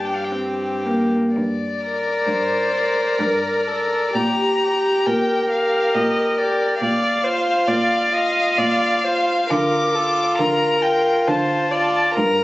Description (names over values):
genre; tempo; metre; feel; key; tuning
classical, slow romantic movement for string quartet; 67 BPM; 3/4; uneven beats, rubato; G minor; A4 = 440 Hz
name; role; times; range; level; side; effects
warm violin; melody; 0.0-12.4 s; D5 to D6; -22 LUFS; left 3 dB; none
warm violin; second line; 0.0-12.1 s; F4 to Bb4; -23 LUFS; equal; none
warm viola; accompaniment; 0.0-12.4 s; Bb3 to Eb5; -21 LUFS; equal; none
rich cello; bass; 0.0-12.4 s; G2 to D3; -26 LUFS; right 1 dB; none
room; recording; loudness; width
moderate large studio reverb, RT60 1.3 s; recorded on a phone in the room, club ambience, nothing above 7.9 kHz; -17 LUFS; side -17 dB against mid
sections
0.0-1.4 A section; 1.4-12.4 B section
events
none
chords
0.0 Gm; 4.2 Gm/Bb; 6.8 Bb5; 9.5 Bb/D